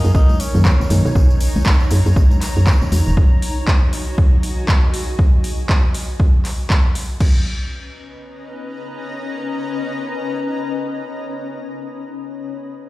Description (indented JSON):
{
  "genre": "deep house",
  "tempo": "119 BPM",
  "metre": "4/4",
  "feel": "swing 59% on 16ths",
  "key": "B major",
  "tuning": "A4 = 438 Hz",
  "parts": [
    { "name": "breathy tenor saxophone", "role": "melody", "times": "0.0-1.1 s", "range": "C#4 to D#4", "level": "-29 LUFS", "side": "equal", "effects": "dub echo" },
    { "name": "woody FM bass", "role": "bass", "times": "0.0-3.1 s", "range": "E1 to B2", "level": "-16 LUFS", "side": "equal", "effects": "sidechain pumping" },
    { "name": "tambourine", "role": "percussion", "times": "0.0-3.2 s", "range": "none", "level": "-34 LUFS", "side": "left 2 dB", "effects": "none" },
    { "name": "granular cloud pad", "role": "texture", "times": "0.0-12.0 s", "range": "C#4 to A#5", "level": "-27 LUFS", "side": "left 2 dB", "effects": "built-in reverb, sidechain pumping" },
    { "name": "electronic kick drum", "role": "drums", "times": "0.1-7.3 s", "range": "none", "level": "-15 LUFS", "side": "equal", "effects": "overdrive, studio reverb" },
    { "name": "congas and bongos", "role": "percussion", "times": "0.3-3.0 s", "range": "none", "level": "-28 LUFS", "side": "left 3 dB", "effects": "none" },
    { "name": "deep house drum kit", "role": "drums", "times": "0.4-7.3 s", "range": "crash cymbal, handclaps, hi-hat", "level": "-25 LUFS", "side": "equal", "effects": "overdrive, studio reverb" },
    { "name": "bell-like tine electric piano", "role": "stabs", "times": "0.5-1.0 s", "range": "D#3 to D#4", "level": "-22 LUFS", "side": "equal", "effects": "sidechain pumping, tape echo" }
  ],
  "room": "little or no reverb",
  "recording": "played on a big sound system in a bare room, stone room reverb",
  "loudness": "-14 LUFS",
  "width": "side -18 dB against mid",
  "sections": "0.0-7.2 A section; 7.2-11.2 B section",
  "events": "none",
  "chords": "0.0 Bmaj9; 2.9 Emaj9 (rootless); 7.2 Bmaj9",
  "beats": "0.15 0.65 | 1.15 1.66 2.16 2.67 | 3.17 3.67 4.18 4.68 | 5.19 5.69 6.20 6.70 | 7.21 7.71 8.21 8.72 | 9.22 9.73 10.23 10.73"
}